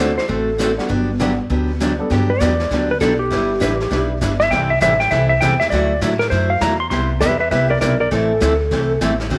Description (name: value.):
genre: country, western swing.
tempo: 200 BPM.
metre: 4/4.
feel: swing 62% on 8ths.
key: G major.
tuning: A4 = 440 Hz.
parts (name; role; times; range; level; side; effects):
clean lap steel guitar; second line; 0.0-9.0 s; G4 to C6; -20 LUFS; equal; slapback echo.
picked acoustic archtop guitar; accompaniment; 0.0-9.4 s; C3 to B4; -23 LUFS; equal; none.
warm upright piano; accompaniment; 0.0-2.1 s; G3 to A4; -28 LUFS; equal; none.
upright bass; bass; 0.0-9.4 s; G1 to A2; -24 LUFS; equal; none.
vintage brush drum kit; drums; 0.2-9.4 s; brushed snare drum, hi-hat, kick drum, snare drum; -29 LUFS; equal; none.
room: light reverb, small room ambience.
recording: none.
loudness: -17 LUFS.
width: mono.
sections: 0.0-2.1 A section; 2.1-9.4 B section.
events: electric slide guitar solo 2.1-9.4.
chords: 0.0 D7; 0.9 Gmaj7; 3.3 Em7/G; 4.5 C6; 5.7 Dadd9; 6.9 Cmaj7; 8.1 Am.